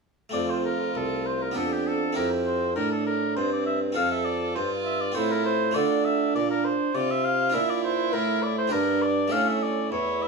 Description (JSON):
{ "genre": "classical, baroque-style sonata movement with continuo", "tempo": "100 BPM", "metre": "3/4", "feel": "rubato", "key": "F major", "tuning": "A4 = 439 Hz", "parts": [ { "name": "warm oboe", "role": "melody", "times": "0.3-10.3 s", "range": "G4 to F5", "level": "-28 LUFS", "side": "left 3 dB", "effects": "none" }, { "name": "warm violin", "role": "second line", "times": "0.3-10.3 s", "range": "C4 to A4", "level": "-29 LUFS", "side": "right 7 dB", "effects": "none" }, { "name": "harpsichord", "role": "accompaniment", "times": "0.3-10.3 s", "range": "C2 to Bb4", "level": "-30 LUFS", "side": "left 1 dB", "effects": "none" }, { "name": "mellow bassoon", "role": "bass", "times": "0.3-10.3 s", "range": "C2 to D3", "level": "-28 LUFS", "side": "right 2 dB", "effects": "none" } ], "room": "moderate studio reverb, RT60 0.7 s", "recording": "none", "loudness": "-23 LUFS", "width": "side -4 dB against mid", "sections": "0.3-10.3 A section", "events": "none", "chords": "0.3 F; 1.6 G7/F; 2.2 C/F; 4.0 F; 5.2 F/A; 5.8 Dm; 7.5 Bb; 8.7 Gm; 9.3 A7" }